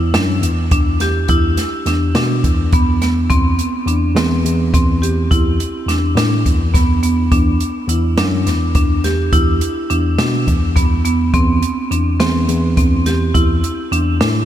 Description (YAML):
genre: progressive instrumental, band music in an uneven meter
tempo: 209 BPM (eighths)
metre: 7/8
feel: straight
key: E minor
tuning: A4 = 440 Hz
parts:
  - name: marimba with medium hard mallets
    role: arpeggios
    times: 0.0-14.4 s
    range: B3 to G4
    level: -18 LUFS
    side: right 1 dB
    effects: tape echo
  - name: tine electric piano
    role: bass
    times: 0.0-14.4 s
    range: E2 to B2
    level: -16 LUFS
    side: equal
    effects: auto-pan
  - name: open jazz drum kit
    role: drums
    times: 0.1-14.3 s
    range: hi-hat, kick drum, snare drum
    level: -18 LUFS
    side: equal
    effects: none
room: light reverb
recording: none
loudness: -13 LUFS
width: side -11 dB against mid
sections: 0.0-14.4 A section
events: none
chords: 0.0 Dsus4/E; 1.3 Bmadd11/E; 3.3 C/E; 5.3 E5; 7.3 N.C.; 9.3 Bmadd11/E; 11.3 C/E; 13.3 E5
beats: 0.14 0.42 0.71 1.00 | 1.29 1.57 1.86 2.15 2.43 2.72 3.01 | 3.30 3.58 3.87 4.16 4.44 4.73 5.02 | 5.31 5.59 5.88 6.17 6.45 6.74 7.03 | 7.32 7.60 7.89 8.18 8.46 8.75 9.04 | 9.32 9.61 9.90 10.19 10.47 10.76 11.05 | 11.34 11.62 11.91 12.20 12.48 12.77 13.06 | 13.35 13.63 13.92 14.21